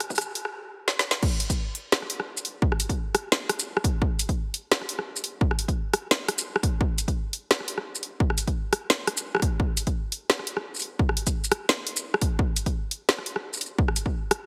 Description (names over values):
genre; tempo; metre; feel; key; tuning
drum and bass; 172 BPM; 4/4; swing 56% on 16ths, half-time; none; none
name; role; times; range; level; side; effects
drum and bass drum kit; drums; 0.0-14.4 s; crash cymbal, hi-hat, rim click, shaker, snare drum; -27 LUFS; equal; overdrive, high-pass filter on snare, high-pass filter on hats, high-pass filter on perc, high-pass filter on cymbals
electronic kick drum; drums; 0.1-14.1 s; none; -27 LUFS; equal; high-pass filter on kick
room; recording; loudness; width
light reverb; heavily compressed radio sound; -27 LUFS; mono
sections
0.0-1.2 A section; 1.2-14.5 B section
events
build-up 0.0-1.2; drum fill 0.9-1.2; drop 1.2-14.5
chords
none